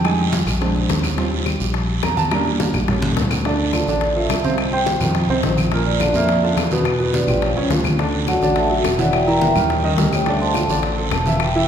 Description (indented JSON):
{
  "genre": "Afro-Cuban jazz",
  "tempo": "211 BPM",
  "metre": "4/4",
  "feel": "straight",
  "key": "D minor",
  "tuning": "A4 = 440 Hz",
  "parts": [
    { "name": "warm baby grand piano", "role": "accompaniment", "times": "0.0-11.7 s", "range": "Bb2 to Bb5", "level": "-21 LUFS", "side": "right 1 dB", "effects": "none" },
    { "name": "modern bright picked electric bass", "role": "bass", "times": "0.0-11.7 s", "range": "E1 to F2", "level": "-22 LUFS", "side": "equal", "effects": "none" },
    { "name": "claves", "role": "percussion", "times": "0.0-11.5 s", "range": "none", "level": "-32 LUFS", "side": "left 5 dB", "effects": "none" },
    { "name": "congas", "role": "percussion", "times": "0.0-11.7 s", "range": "none", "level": "-26 LUFS", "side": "left 1 dB", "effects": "none" },
    { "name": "guiro", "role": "percussion", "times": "0.0-11.7 s", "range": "none", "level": "-30 LUFS", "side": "right 6 dB", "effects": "none" },
    { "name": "bongos", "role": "percussion", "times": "0.1-11.7 s", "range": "none", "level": "-27 LUFS", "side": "left 5 dB", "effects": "none" },
    { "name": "vibraphone with medium mallets", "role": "melody", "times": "3.7-11.7 s", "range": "D4 to C6", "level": "-22 LUFS", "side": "equal", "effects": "none" }
  ],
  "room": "wet recital hall reverb, RT60 1.5 s",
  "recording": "recorded in a church or concert hall",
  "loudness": "-16 LUFS",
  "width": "side -8 dB against mid",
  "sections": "0.0-3.5 A section; 3.5-11.7 A section",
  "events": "grand piano solo 0.0-3.5; drum fill 3.0-3.5; vibraphone solo 3.5-11.7",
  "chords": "0.0 Fm7; 0.6 Bb9; 1.2 Eb6; 2.3 Em7b5; 2.9 A7b9; 3.5 Dm9; 4.6 Cm; 5.2 F5; 5.7 Bb; 6.9 Em7; 7.4 A7alt; 8.0 Dmaj9; 9.1 Em7b5; 9.7 Eb7; 10.3 Dm9"
}